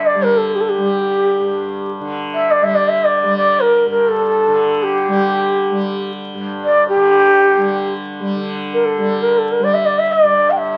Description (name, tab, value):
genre	indian classical, Hindustani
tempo	free time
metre	none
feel	none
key	G raga shivaranjani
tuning	A4 = 441 Hz
part	breathy bansuri	melody	0.0-10.8 s	G4 to G5	-16 LUFS	equal	none
part	tanpura	drone	0.0-10.8 s	G2 to G3	-25 LUFS	equal	none
room	moderate club reverb, RT60 0.7 s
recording	very old 78 rpm record, vinyl crackle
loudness	-16 LUFS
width	mono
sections	0.0-8.4 A section; 8.4-10.8 A section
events	none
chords	none